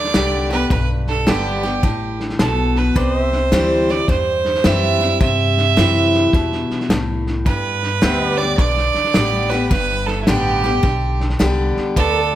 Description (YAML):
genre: honky-tonk and classic country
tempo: 107 BPM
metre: 4/4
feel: swing 65% on 8ths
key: G major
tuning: A4 = 442 Hz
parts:
  - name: clear fiddle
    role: second line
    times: 0.0-12.4 s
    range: E4 to E5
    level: -19 LUFS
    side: right 5 dB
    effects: none
  - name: picked steel-string acoustic guitar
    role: accompaniment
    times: 0.0-12.4 s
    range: G2 to G4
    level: -21 LUFS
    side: left 2 dB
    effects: none
  - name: pedal steel guitar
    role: sustained chords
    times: 0.0-12.4 s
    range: A4 to E5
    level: -27 LUFS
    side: left 1 dB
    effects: none
  - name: upright bass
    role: bass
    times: 0.0-12.4 s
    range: G1 to G2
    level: -22 LUFS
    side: equal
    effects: none
  - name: vintage drum kit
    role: drums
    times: 0.0-12.4 s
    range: hi-hat, kick drum, snare drum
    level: -20 LUFS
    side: equal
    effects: none
room: light reverb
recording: none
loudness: -15 LUFS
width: side -12 dB against mid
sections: 0.0-12.4 A section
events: fiddle solo 0.0-12.4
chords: 0.0 G; 3.0 C; 7.5 G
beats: 0.15 | 0.71 1.27 1.84 2.40 | 2.96 3.52 4.09 4.65 | 5.21 5.78 6.34 6.90 | 7.46 8.03 8.59 9.15 | 9.71 10.28 10.84 11.40 | 11.97